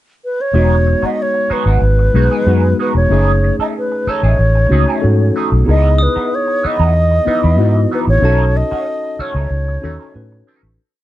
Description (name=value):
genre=soul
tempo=94 BPM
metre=4/4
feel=straight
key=unclear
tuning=A4 = 440 Hz
part: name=alto flute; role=melody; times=0.2-10.5 s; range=B4 to D#5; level=-18 LUFS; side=equal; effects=none
part: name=mellow tine electric piano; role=accompaniment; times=0.5-10.8 s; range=G#3 to B4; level=-20 LUFS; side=left 3 dB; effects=fast stereo tremolo
part: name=electric guitar through a small old amp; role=riff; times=0.5-10.7 s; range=E3 to A4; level=-24 LUFS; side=right 6 dB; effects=wah, phaser
part: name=vintage muted fingered electric bass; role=bass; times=0.5-10.8 s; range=E1 to A2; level=-13 LUFS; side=equal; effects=none
part: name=glockenspiel with soft plastic mallets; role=texture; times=6.0-10.4 s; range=A5 to D#6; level=-27 LUFS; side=left 1 dB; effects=none
room=light reverb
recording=dark, warm production, nothing above 11.0 kHz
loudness=-12 LUFS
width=side -14 dB against mid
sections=0.0-0.5 pickup bar; 0.5-10.8 verse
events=fade-out 8.2-10.8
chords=0.0 N.C.; 0.5 Emaj9; 3.1 F#m69; 5.7 C#m9; 8.2 B9